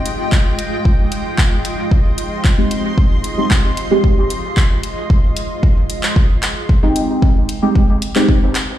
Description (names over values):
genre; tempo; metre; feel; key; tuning
dub techno; 113 BPM; 4/4; straight; F minor; A4 = 440 Hz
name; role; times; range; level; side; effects
granular cloud pad; sustained chords; 0.0-5.1 s; Ab3 to C6; -23 LUFS; equal; built-in reverb, sidechain pumping
deep house drum kit; drums; 0.1-8.7 s; handclaps, hi-hat; -22 LUFS; equal; studio reverb, dub echo
electronic kick drum; drums; 0.3-8.4 s; none; -13 LUFS; equal; studio reverb
deep mellow chord stab; stabs; 2.6-8.3 s; Ab3 to G4; -17 LUFS; right 1 dB; chorus, phaser, sidechain pumping, dub echo
room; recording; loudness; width
light reverb; played on a big sound system in a bare room, stone room reverb; -13 LUFS; side -12 dB against mid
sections
0.0-5.1 A section; 5.1-8.8 A section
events
none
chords
0.0 Fm9; 5.1 Fm9 (rootless)